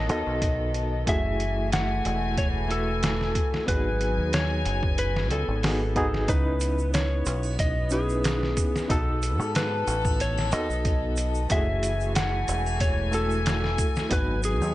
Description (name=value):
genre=trip hop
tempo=92 BPM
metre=4/4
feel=swing 54% on 16ths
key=unclear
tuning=A4 = 440 Hz
part: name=electric slide guitar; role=melody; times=0.0-14.7 s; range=G#4 to F#5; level=-30 LUFS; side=equal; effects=tape echo
part: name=reed electric piano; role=accompaniment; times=0.0-14.7 s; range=A3 to B4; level=-31 LUFS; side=equal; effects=tremolo, vintage 12-bit sampler grit
part: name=warm studio string section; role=sustained chords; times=0.0-14.7 s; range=D#3 to G#5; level=-33 LUFS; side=left 2 dB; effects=vintage 12-bit sampler grit
part: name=deep dub fingered electric bass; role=bass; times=0.0-14.7 s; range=E1 to G#2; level=-28 LUFS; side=equal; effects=none
part: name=trip hop sampler-style drum kit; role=drums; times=0.1-14.6 s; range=hi-hat, kick drum, snare drum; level=-27 LUFS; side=equal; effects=none
part: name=tube shaker and triangle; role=percussion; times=6.3-14.7 s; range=none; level=-41 LUFS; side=right 6 dB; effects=none
room=little or no reverb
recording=nothing above 10.3 kHz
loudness=-23 LUFS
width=side -16 dB against mid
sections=0.0-14.7 A section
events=none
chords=0.0 B7; 1.1 F#m9; 3.7 G#m7; 6.3 C#m9; 8.9 B7; 11.5 F#m9; 14.1 G#m7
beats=0.42 | 1.07 1.72 2.37 3.02 | 3.68 4.33 4.98 5.63 | 6.29 6.94 7.59 8.24 | 8.89 9.55 10.20 10.85 | 11.50 12.15 12.81 13.46 | 14.11